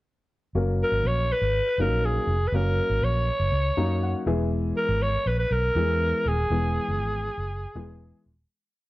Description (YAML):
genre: uptempo 1960s-style soul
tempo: 121 BPM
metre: 4/4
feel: straight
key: F# mixolydian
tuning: A4 = 440 Hz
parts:
  - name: vintage muted fingered electric bass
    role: bass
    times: 0.5-8.4 s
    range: D#1 to F#2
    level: -26 LUFS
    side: equal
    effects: none
  - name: dark grand piano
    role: accompaniment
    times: 0.6-8.3 s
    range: E3 to A#5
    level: -29 LUFS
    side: left 3 dB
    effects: plate reverb
  - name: growling alto saxophone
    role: melody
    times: 0.8-8.3 s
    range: G#4 to C#5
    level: -26 LUFS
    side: equal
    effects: plate reverb
room: light reverb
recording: dark, warm production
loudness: -22 LUFS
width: side -18 dB against mid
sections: 0.6-8.5 verse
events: grand piano fill 3.5-4.5; fade-out 6.5-8.5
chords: 0.6 F#; 4.3 E